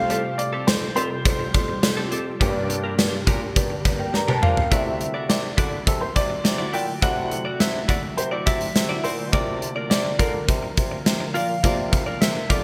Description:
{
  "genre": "1980s-style pop",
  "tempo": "104 BPM",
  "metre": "4/4",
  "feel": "straight",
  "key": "unclear",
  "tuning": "A4 = 437 Hz",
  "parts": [
    { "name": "warm grand piano", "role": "melody", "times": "0.0-12.6 s", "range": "A4 to G5", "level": "-30 LUFS", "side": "equal", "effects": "subtle chorus" },
    { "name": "warm concert grand piano", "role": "accompaniment", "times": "0.0-12.6 s", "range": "G2 to Bb5", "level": "-34 LUFS", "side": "equal", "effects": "ensemble chorus" },
    { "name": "ethereal airy pad", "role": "sustained chords", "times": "0.0-12.6 s", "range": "C3 to Bb4", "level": "-35 LUFS", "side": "equal", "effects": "ensemble chorus, built-in reverb, tremolo" },
    { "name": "mellow bassoon", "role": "bass", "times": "0.0-12.6 s", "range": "F2 to D3", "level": "-32 LUFS", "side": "equal", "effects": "none" },
    { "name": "direct-recorded clean electric guitar", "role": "riff", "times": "0.1-12.6 s", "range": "C4 to D5", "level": "-34 LUFS", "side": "equal", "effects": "subtle chorus" },
    { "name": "gated 80s drum kit", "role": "drums", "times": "0.1-12.6 s", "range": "hi-hat, kick drum, snare drum, tambourine, toms", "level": "-24 LUFS", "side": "equal", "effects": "gated reverb" },
    { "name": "cowbell", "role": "percussion", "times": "0.1-4.3 s", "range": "none", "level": "-41 LUFS", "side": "equal", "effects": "none" }
  ],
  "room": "moderate lush hall reverb, RT60 2.5 s",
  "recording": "bright 1980s-style digital production",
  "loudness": "-22 LUFS",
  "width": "mono",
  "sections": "0.0-4.7 A section; 4.7-12.6 B section",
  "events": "drum fill 4.1-4.7",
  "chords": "0.0 Fadd9; 2.4 Gm; 4.7 Dadd9; 9.3 Bb"
}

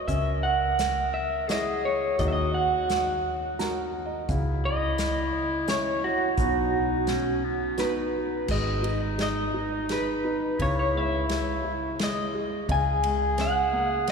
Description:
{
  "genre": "acoustic folk-pop ballad",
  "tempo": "86 BPM",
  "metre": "3/4",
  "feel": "straight",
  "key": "C# dorian",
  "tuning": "A4 = 438 Hz",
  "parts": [
    { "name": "electric guitar through a small old amp", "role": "melody", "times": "0.0-14.1 s", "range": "F#4 to G#5", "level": "-27 LUFS", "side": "right 2 dB", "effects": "tremolo" },
    { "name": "felt-muted upright piano", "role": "accompaniment", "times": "0.0-14.1 s", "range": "B2 to A#5", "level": "-34 LUFS", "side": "right 1 dB", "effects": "none" },
    { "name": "vintage muted fingered electric bass", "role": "bass", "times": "0.0-14.1 s", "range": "G#1 to D#2", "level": "-32 LUFS", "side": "equal", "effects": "none" },
    { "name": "bright clarinet", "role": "second line", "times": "0.1-14.1 s", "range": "B3 to A#4", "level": "-32 LUFS", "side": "left 3 dB", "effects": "none" },
    { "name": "unplugged drum kit", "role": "drums", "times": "0.1-14.1 s", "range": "crash cymbal, hi-hat, kick drum, ride cymbal, snare drum", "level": "-35 LUFS", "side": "equal", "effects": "none" }
  ],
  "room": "wet cathedral reverb, RT60 4.8 s",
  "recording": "recorded in a church or concert hall",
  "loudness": "-24 LUFS",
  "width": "side -5 dB against mid",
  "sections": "0.0-8.5 A section; 8.5-14.1 B section",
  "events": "none",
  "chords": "0.1 C#madd9; 2.2 D#m; 4.3 C#madd9; 6.4 B; 8.5 G#m; 10.6 C#madd9; 12.7 F#add9/C#"
}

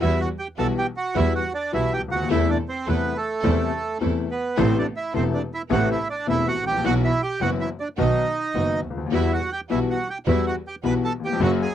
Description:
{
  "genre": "tango",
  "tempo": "105 BPM",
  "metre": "4/4",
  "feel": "rubato",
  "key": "E minor",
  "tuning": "A4 = 440 Hz",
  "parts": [
    { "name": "bandoneon", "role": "melody", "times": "0.0-11.7 s", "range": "A3 to B5", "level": "-25 LUFS", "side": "right 4 dB", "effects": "none" },
    { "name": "clear upright piano", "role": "accompaniment", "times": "0.0-11.6 s", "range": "E1 to F#4", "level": "-24 LUFS", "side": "left 7 dB", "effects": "none" },
    { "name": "clear studio string section", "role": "stabs", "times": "0.0-11.7 s", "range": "G3 to A4", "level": "-32 LUFS", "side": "right 7 dB", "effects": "none" },
    { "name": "rich double bass", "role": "bass", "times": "0.0-11.6 s", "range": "E1 to E2", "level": "-25 LUFS", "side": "right 3 dB", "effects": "none" }
  ],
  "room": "little or no reverb",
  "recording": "dry, close 1970s-style studio recording",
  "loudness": "-21 LUFS",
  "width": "side -10 dB against mid",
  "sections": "0.0-11.7 A section",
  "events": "none",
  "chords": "0.0 Emadd9; 2.3 C6/E; 4.6 Amadd9; 6.8 Bsus4; 8.0 B; 9.1 Emadd9"
}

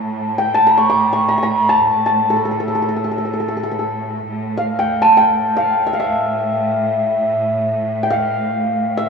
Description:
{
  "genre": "Persian modal ensemble",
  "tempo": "free time",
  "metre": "none",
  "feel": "none",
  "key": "A dastgah homayun",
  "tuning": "A4 = 440 Hz",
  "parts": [
    { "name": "santur", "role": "melody", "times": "0.0-9.1 s", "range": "A4 to D6", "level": "-15 LUFS", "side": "equal", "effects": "cassette tape, analog delay" },
    { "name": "bright symphonic cello section", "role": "drone", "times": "0.0-9.1 s", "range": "A2", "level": "-24 LUFS", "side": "right 3 dB", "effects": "cassette tape" }
  ],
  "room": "moderate lush hall reverb, RT60 2.8 s",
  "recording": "home recording on cassette, small room ambience",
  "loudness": "-14 LUFS",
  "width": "side -5 dB against mid",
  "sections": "0.0-4.3 A section; 4.3-9.1 A section",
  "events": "none",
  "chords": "none"
}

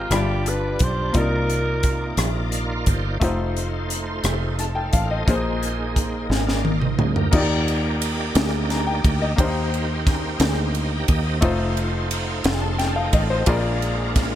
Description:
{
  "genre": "slow gospel",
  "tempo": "58 BPM (dotted quarters)",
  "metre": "6/8",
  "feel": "straight",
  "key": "Eb major",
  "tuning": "A4 = 440 Hz",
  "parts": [
    { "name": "bright alto saxophone", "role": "melody", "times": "0.0-2.2 s", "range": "F4 to C5", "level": "-27 LUFS", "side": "right 1 dB", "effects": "none" },
    { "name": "clear grand piano", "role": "accompaniment", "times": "0.0-14.4 s", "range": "G2 to B5", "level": "-26 LUFS", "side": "left 3 dB", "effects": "none" },
    { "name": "bright tonewheel organ", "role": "sustained chords", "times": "0.0-14.4 s", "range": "G3 to C6", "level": "-28 LUFS", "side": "right 2 dB", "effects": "fast rotary speaker, overdrive, chorus vibrato" },
    { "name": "fingered electric bass", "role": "bass", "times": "0.0-14.4 s", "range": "F1 to Eb2", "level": "-24 LUFS", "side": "equal", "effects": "none" },
    { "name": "crisp fusion drum kit", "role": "drums", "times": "0.1-14.3 s", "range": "crash cymbal, hi-hat, kick drum, ride cymbal, rim click, snare drum, toms", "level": "-23 LUFS", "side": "equal", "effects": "none" }
  ],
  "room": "small room ambience",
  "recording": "none",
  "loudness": "-19 LUFS",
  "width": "side -12 dB against mid",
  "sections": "0.0-7.3 A section; 7.3-14.4 B section",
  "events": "tonewheel organ fill 2.2-3.2; drum fill 6.3-7.3",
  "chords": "0.1 G7; 1.2 Cm11; 3.2 F7; 5.3 Bb9sus4; 7.3 Ebmaj7; 9.4 Cm7/Eb; 11.4 F7; 13.5 Bb7"
}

